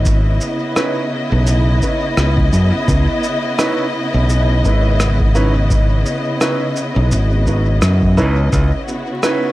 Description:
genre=ambient dub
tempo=85 BPM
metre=4/4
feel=swing 58% on 16ths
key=C# minor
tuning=A4 = 440 Hz
part: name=warm symphonic string section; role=sustained chords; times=0.0-9.5 s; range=C#3 to D#5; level=-20 LUFS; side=left 1 dB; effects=none
part: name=modern bright fingered electric bass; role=bass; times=0.0-8.7 s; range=G#1 to F#2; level=-14 LUFS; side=equal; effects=none
part: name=electronic kick drum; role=drums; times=0.1-8.7 s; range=none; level=-19 LUFS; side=equal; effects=overdrive
part: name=electronic shaker and rim click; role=drums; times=0.1-9.4 s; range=none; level=-24 LUFS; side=equal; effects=dub echo
part: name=bright upright piano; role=stabs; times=0.8-9.5 s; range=C#4 to B4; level=-23 LUFS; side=right 2 dB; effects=dub echo
room=digital ambience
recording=vinyl crackle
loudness=-13 LUFS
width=side -17 dB against mid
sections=0.0-9.5 A section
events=none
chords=0.0 C#m9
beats=| 0.06 0.76 1.47 2.17 | 2.88 3.59 4.29 5.00 | 5.70 6.41 7.12 7.82 | 8.53 9.23

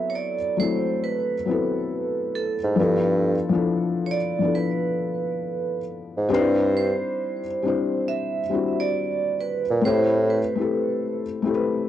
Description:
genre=lo-fi hip hop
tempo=68 BPM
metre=4/4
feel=swing 64% on 16ths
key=unclear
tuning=A4 = 439 Hz
part: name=vibraphone with hard mallets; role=melody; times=0.0-11.1 s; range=A4 to E5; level=-27 LUFS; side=right 6 dB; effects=cassette tape
part: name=felt-muted upright piano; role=accompaniment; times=0.0-11.9 s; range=F3 to C5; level=-24 LUFS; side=left 5 dB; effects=none
part: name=mellow bassoon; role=bass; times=2.6-10.5 s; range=G2 to Bb2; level=-21 LUFS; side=right 1 dB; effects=none
room=light reverb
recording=home recording on cassette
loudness=-21 LUFS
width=side -11 dB against mid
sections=0.0-11.9 A section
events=none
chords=0.0 D13 (rootless); 2.8 G13; 6.3 Cadd9/G; 9.8 Am9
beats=0.13 1.01 1.90 | 2.78 3.66 4.54 5.43 | 6.31 7.19 8.07 8.96 | 9.84 10.72 11.60

